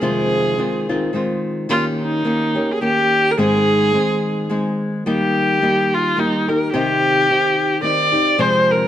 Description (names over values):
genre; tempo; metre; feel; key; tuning
mexican folk, mariachi; 107 BPM; 3/4; swing 55% on 8ths; Ab major, Eb major from 5.1 s; A4 = 441 Hz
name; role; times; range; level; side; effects
warm viola; melody; 0.0-8.9 s; Eb4 to D5; -17 LUFS; equal; none
nylon-string guitar; accompaniment; 0.0-8.9 s; F2 to Ab4; -19 LUFS; left 1 dB; none
room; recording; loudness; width
moderate recital hall reverb, RT60 1.8 s; close, detailed microphones; -15 LUFS; side -11 dB against mid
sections
0.0-5.1 A section; 5.1-8.9 B section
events
none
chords
0.0 Fm7; 1.7 Eb7; 3.4 Ab; 5.1 Eb; 6.7 Cm